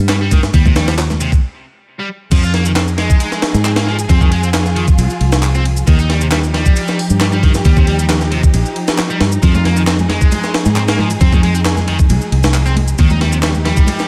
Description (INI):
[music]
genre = breakbeat, breaks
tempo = 135 BPM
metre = 4/4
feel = straight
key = F minor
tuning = A4 = 442 Hz
[part]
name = fingered electric bass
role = bass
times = 0.0-13.8 s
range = Bb1 to Ab2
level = -17 LUFS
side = equal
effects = none
[part]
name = distorted electric guitar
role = riff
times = 0.1-14.1 s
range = C3 to F4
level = -24 LUFS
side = equal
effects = overdrive, vintage 12-bit sampler grit, dub echo
[part]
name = breakbeat sampler-style drum kit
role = drums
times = 0.1-14.1 s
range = crash cymbal, hi-hat, kick drum, ride cymbal, snare drum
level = -17 LUFS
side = equal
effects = none
[part]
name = electronic handclaps and shaker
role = drums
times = 0.1-14.1 s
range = none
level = -28 LUFS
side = equal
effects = none
[part]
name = congas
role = percussion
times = 0.3-1.2, 9.5-14.0 s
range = none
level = -25 LUFS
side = equal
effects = none
[part]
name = rich studio string section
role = sustained chords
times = 2.3-14.1 s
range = F3 to Ab4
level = -24 LUFS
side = equal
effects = sidechain pumping
[sound]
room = digital ambience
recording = none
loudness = -13 LUFS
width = mono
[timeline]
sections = 0.0-2.3 A section; 2.3-14.1 B section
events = break 1.4-2.3; drop 2.3-14.1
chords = 0.0 Eb; 2.3 Fm7; 5.9 Ebadd9; 9.4 Fm7; 13.0 Ebadd9